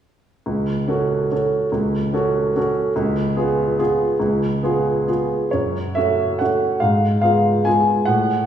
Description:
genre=classical, piano waltz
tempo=128-153 BPM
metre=3/4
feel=rubato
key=F# minor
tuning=A4 = 442 Hz
part: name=clear grand piano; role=solo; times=0.5-8.5 s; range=C#2 to Ab5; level=-17 LUFS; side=right 1 dB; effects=none
room=wet recital hall reverb, RT60 1.6 s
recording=recorded in a church or concert hall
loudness=-17 LUFS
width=side -9 dB against mid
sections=0.5-5.5 A section; 5.5-8.5 B section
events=none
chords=0.5 F#m/C#; 3.0 C#7; 5.5 F#m; 6.8 Fdim/Ab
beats=| 0.46 0.89 1.31 | 1.73 2.14 2.57 | 2.97 3.37 3.79 | 4.21 4.63 5.08 | 5.53 5.96 6.40 | 6.82 7.23 7.66 | 8.09

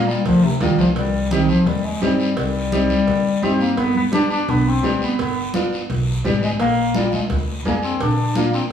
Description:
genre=latin, cumbia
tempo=170 BPM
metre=4/4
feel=straight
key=C minor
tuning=A4 = 445 Hz
part: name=warm bass clarinet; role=melody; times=0.0-8.6 s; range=C3 to D4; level=-19 LUFS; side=left 1 dB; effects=none
part: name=clear upright piano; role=accompaniment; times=0.0-8.6 s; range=Bb3 to Ab4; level=-24 LUFS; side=right 1 dB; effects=none
part: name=upright bass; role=bass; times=0.0-8.6 s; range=G1 to G2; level=-24 LUFS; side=equal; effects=none
part: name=guiro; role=percussion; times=0.1-8.7 s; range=none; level=-32 LUFS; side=left 2 dB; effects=none
part: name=congas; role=percussion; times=0.3-8.5 s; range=none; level=-28 LUFS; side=left 1 dB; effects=none
part: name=cowbell and timbales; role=percussion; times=0.3-8.2 s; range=none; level=-31 LUFS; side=right 2 dB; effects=none
room=wet large studio reverb, RT60 1.3 s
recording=band playing live in one room, small room ambience, faint mains hum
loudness=-16 LUFS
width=side -8 dB against mid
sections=1.0-8.7 A section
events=drum fill 0.4-1.0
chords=0.0 Bb; 1.0 Cm; 3.8 G; 6.6 Bb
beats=0.26 0.61 | 0.96 1.32 1.67 2.02 | 2.37 2.73 3.08 3.43 | 3.78 4.13 4.49 4.84 | 5.19 5.54 5.89 6.25 | 6.60 6.95 7.30 7.65 | 8.00 8.36 8.71

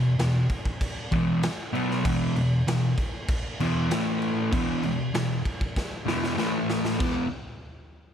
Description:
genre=garage rock duo or trio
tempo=97 BPM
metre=4/4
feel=straight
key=unclear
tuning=A4 = 444 Hz
part: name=fuzz guitar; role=riff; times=0.0-7.2 s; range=E2 to B3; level=-24 LUFS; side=equal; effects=distortion
part: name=raw garage drum kit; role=drums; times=0.2-7.1 s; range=crash cymbal, kick drum, snare drum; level=-30 LUFS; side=equal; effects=none
room=light reverb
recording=none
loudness=-24 LUFS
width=side -9 dB against mid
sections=0.0-7.0 A section; 7.0-8.1 B section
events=drum fill 5.8-7.0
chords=0.0 E5; 3.9 A5; 4.5 E5; 6.4 A5; 7.0 E5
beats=0.18 0.81 1.43 | 2.05 2.67 3.29 3.90 | 4.52 5.14 5.76 6.38 | 7.00

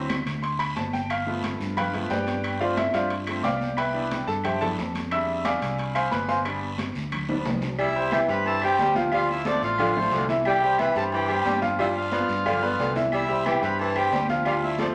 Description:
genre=latin, salsa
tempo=180 BPM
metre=4/4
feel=straight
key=C major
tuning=A4 = 439 Hz
part: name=bright grand piano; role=accompaniment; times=0.0-14.9 s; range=E3 to E6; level=-29 LUFS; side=equal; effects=none
part: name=fingered electric bass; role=bass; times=0.0-14.9 s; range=G1 to G2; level=-35 LUFS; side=equal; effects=none
part: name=claves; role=percussion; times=0.1-14.6 s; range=none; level=-40 LUFS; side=equal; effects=none
part: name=congas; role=percussion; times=0.1-14.9 s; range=none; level=-37 LUFS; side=equal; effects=none
part: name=guiro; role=percussion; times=0.1-14.9 s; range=none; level=-43 LUFS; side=equal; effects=none
part: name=timbales and agogo bells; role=percussion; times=0.1-14.9 s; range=none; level=-36 LUFS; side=equal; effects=none
part: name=accordion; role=melody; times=7.8-14.9 s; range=D4 to B5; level=-28 LUFS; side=equal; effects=none
part: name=clear saxophone section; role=second line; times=7.8-14.9 s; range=D3 to G3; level=-33 LUFS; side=equal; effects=none
room=wet large studio reverb, RT60 1.1 s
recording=none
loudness=-25 LUFS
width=mono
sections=0.0-7.8 A section; 7.8-14.9 B section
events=grand piano solo 0.0-7.8; drum fill 7.3-7.8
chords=0.0 D7; 1.1 G7; 2.4 Cmaj7; 5.1 Fm6; 6.5 G; 7.8 C; 9.1 Dm7; 10.5 C; 11.8 G7; 13.1 C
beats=0.10 0.43 0.77 | 1.10 1.44 1.77 2.11 | 2.44 2.77 3.11 3.44 | 3.78 4.11 4.45 4.78 | 5.12 5.45 5.79 6.12 | 6.45 6.79 7.12 7.46 | 7.79 8.12 8.46 8.79 | 9.12 9.46 9.79 10.12 | 10.46 10.79 11.12 11.46 | 11.79 12.12 12.46 12.79 | 13.12 13.46 13.79 14.12 | 14.46 14.79

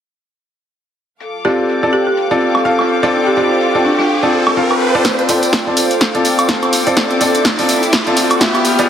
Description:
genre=piano house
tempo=125 BPM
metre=4/4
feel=swing 58% on 16ths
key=F major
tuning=A4 = 440 Hz
part: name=dark studio string section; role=sustained chords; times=1.2-8.9 s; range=A4 to F6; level=-21 LUFS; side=left 2 dB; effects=sidechain pumping, low-pass filter
part: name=open jazz drum kit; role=drums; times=1.2-4.9 s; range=hi-hat, snare drum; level=-30 LUFS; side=left 2 dB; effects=none
part: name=riser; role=sound effects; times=2.6-8.9 s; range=none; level=-21 LUFS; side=right 2 dB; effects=none
part: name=airy breathy pad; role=texture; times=1.6-8.9 s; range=F4 to A5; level=-23 LUFS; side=right 1 dB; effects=chorus, phaser, sidechain pumping
part: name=folk marimba with medium hard mallets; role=melody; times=1.4-4.1 s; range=D4 to G4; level=-20 LUFS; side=right 2 dB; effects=tape echo
part: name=bright baby grand piano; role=riff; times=1.4-8.9 s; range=B3 to F5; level=-15 LUFS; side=left 1 dB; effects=sidechain pumping, low-pass filter, tape echo
part: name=punchy analog drum machine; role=drums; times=2.5-8.9 s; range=hi-hat, shaker, snare drum, woodblock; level=-16 LUFS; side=right 1 dB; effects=none
part: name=electronic kick drum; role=drums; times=5.0-8.5 s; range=none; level=-25 LUFS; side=equal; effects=none
part: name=tambourine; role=percussion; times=5.0-8.9 s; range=none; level=-26 LUFS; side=right 2 dB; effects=none
room=moderate lush hall reverb, RT60 2.1 s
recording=heavily compressed radio sound, multiband compression, high-pass filter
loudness=-11 LUFS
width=side -9 dB against mid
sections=1.2-5.0 A section; 5.0-8.9 B section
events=riser 2.6-5.0, 5.0-8.9; build-up 5.0-8.9; drum fill 5.0-8.9; filter sweep on grand piano 5.0-8.9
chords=1.2 F6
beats=| 1.21 1.69 2.17 2.65 | 3.13 3.61 4.09 4.57 | 5.05 5.53 6.01 6.49 | 6.97 7.45 7.93 8.41 | 8.89

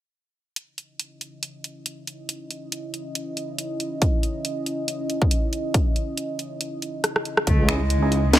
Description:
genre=deep dubstep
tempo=139 BPM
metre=4/4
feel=swing 56% on 16ths, half-time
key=C# minor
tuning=A4 = 440 Hz
part: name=dark analog pad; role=sustained chords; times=0.6-8.4 s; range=C#4 to D#5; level=-30 LUFS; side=equal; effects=chorus
part: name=garage drum kit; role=drums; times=0.6-8.4 s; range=finger snaps, hi-hat, rim click, snare drum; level=-23 LUFS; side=equal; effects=none
part: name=electronic kick drum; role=drums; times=4.0-7.6 s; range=none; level=-21 LUFS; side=equal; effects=none
part: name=rich cello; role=melody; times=7.5-8.4 s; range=G#3 to B3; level=-27 LUFS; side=right 1 dB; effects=dub echo
part: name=deep soft wobble bass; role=bass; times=7.5-8.4 s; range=C#2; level=-21 LUFS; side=equal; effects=chorus
part: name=percussive organ stab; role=stabs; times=7.7-8.2 s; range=C#4 to G#4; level=-29 LUFS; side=right 4 dB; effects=chorus, dub echo
room=little or no reverb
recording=none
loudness=-23 LUFS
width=side -13 dB against mid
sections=0.6-7.5 A section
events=filter sweep on analog synth pad 0.6-7.5; drum fill 7.0-7.5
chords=0.6 C#madd9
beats=| 0.56 1.00 1.43 1.86 | 2.29 2.72 3.15 3.59 | 4.02 4.45 4.88 5.31 | 5.74 6.18 6.61 7.04 | 7.47 7.90 8.33

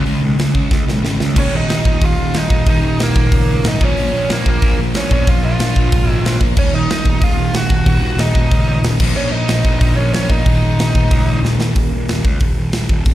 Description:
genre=punk rock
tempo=185 BPM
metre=4/4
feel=straight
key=unclear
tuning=A4 = 443 Hz
part: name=sludgy distorted guitar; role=riff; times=0.0-12.3 s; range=Eb2 to Db4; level=-18 LUFS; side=equal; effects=overdrive
part: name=fuzz picked electric bass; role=bass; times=0.0-13.1 s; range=Eb1 to Db2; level=-20 LUFS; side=equal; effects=overdrive
part: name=tight metal drum kit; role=drums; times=0.1-13.1 s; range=crash cymbal, hi-hat, kick drum, snare drum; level=-16 LUFS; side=equal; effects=none
part: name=bluesy overdriven lead guitar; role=melody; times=1.4-11.4 s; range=Bb3 to Gb5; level=-21 LUFS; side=right 2 dB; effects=distortion, slapback echo
room=small room ambience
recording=live gig heard through the venue's PA, recital hall reverb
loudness=-13 LUFS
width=side -14 dB against mid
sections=0.0-1.4 A section; 1.4-11.8 B section; 11.8-13.1 A section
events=drum fill 0.7-1.4, 11.4-11.8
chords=0.0 Db5; 1.4 Eb5; 3.8 Bbm; 6.6 Ebm; 9.0 Bbm; 10.5 Eb5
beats=| 0.07 0.40 0.72 1.05 | 1.37 1.70 2.03 2.35 | 2.68 3.00 3.33 3.65 | 3.98 4.30 4.63 4.95 | 5.28 5.60 5.92 6.25 | 6.57 6.90 7.22 7.55 | 7.87 8.19 8.52 8.84 | 9.17 9.49 9.81 10.14 | 10.46 10.79 11.11 11.44 | 11.76 12.09 12.41 12.74 | 13.07

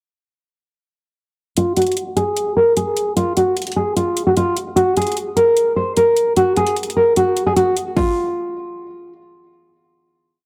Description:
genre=hip hop, trap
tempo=150 BPM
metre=4/4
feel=half-time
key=F phrygian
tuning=A4 = 440 Hz
part: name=nylon-string guitar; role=melody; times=1.6-9.1 s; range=F4 to C5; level=-18 LUFS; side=equal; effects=low-pass filter, digital delay
part: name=trap drum kit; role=drums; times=1.6-8.1 s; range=hi-hat, kick drum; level=-28 LUFS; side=equal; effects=none
room=light reverb, studio reverb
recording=blown-out, overdriven recording, overdrive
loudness=-17 LUFS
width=mono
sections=1.6-8.0 breakdown; 8.0-10.5 final note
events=filter sweep on nylon-string guitar 1.6-8.0; kick muted 7.2-8.0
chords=none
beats=| 1.57 1.97 2.37 2.77 | 3.17 3.57 3.97 4.37 | 4.77 5.17 5.57 5.97 | 6.37 6.77 7.17 7.57 | 7.97 8.37 8.77

